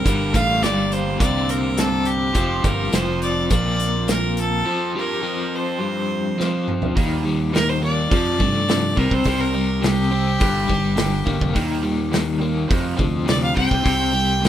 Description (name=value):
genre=indie rock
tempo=104 BPM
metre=4/4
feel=straight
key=unclear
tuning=A4 = 441 Hz
part: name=bright fiddle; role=melody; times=0.0-14.5 s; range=G4 to G5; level=-24 LUFS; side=equal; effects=none
part: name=cranked stack guitar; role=riff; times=0.0-14.5 s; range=F2 to C5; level=-26 LUFS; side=right 8 dB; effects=overdrive, lush chorus, tape echo
part: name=overdriven electric guitar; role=riff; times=0.0-14.5 s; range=F2 to C4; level=-24 LUFS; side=left 5 dB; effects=tremolo
part: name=growling fingered electric bass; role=bass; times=0.1-14.5 s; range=F1 to G2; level=-24 LUFS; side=equal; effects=overdrive
part: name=loose indie drum kit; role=drums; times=0.1-14.5 s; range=hi-hat, kick drum, snare drum, toms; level=-23 LUFS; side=equal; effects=none
room=little or no reverb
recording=rough home demo mix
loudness=-18 LUFS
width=side -11 dB against mid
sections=0.0-7.0 A section; 7.0-14.5 B section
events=break 4.7-7.0; drum fill 6.4-7.0; fiddle solo 7.0-14.5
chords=0.0 Gm; 2.4 F5; 7.0 Eb; 8.1 F; 9.0 C5; 10.4 Gm; 11.6 Eb; 12.7 F5; 13.6 C5